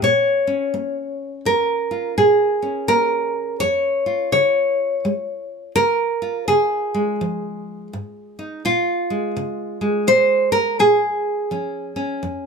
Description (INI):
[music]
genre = folk, solo fingerstyle acoustic guitar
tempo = 84 BPM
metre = 3/4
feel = swing 62% on 8ths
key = unclear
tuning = A4 = 440 Hz
[part]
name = nylon-string guitar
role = solo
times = 0.0-12.5 s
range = F2 to Db5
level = -18 LUFS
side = equal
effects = none
[sound]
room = moderate studio reverb, RT60 0.5 s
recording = close, detailed microphones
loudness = -17 LUFS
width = side -5 dB against mid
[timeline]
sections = 0.0-8.6 A section; 8.6-12.5 B section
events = none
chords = 0.0 Bbm; 4.3 Db; 8.6 Bbm7